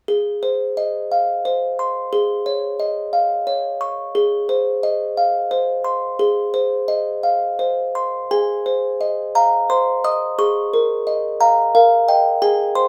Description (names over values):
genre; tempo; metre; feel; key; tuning
classical, lullaby for music box; 88 BPM; 3/4; rubato; Ab major; A4 = 437 Hz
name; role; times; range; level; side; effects
music box; solo; 0.1-12.9 s; Ab4 to Eb6; -19 LUFS; equal; none
room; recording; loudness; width
light reverb; none; -19 LUFS; mono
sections
0.1-8.3 A section; 8.3-12.9 B section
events
none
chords
0.1 Ab; 2.1 Absus4; 4.2 Ab; 10.4 Eb5/Ab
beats
| 0.08 0.77 1.45 | 2.13 2.80 3.47 | 4.15 4.83 5.51 | 6.20 6.89 7.59 | 8.31 9.01 9.70 | 10.39 11.07 11.75 | 12.42